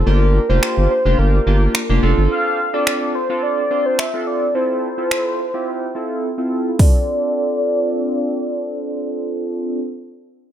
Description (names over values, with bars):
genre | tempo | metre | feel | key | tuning
dance-pop | 107 BPM | 4/4 | straight | D minor | A4 = 436 Hz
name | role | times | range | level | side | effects
warm velvety synth lead | melody | 0.0-9.8 s | Bb4 to F5 | -20 LUFS | equal | chorus, low-pass filter, digital delay
round analog bass | bass | 0.0-2.3 s | F1 to G1 | -14 LUFS | equal | sidechain pumping
chorused polysynth | accompaniment | 0.1-9.8 s | Bb3 to C5 | -21 LUFS | right 1 dB | sidechain pumping, low-pass filter
pop drum kit | drums | 0.6-6.9 s | finger snaps, hi-hat, kick drum | -16 LUFS | equal | none
room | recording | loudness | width
light reverb | none | -16 LUFS | side -10 dB against mid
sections
0.0-6.8 A section; 6.8-9.0 B section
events
filter sweep 0.0-6.8; drums muted 6.2-6.8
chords
0.1 Gm7; 2.0 Dm7/F; 4.6 Fmaj7; 6.8 Dm7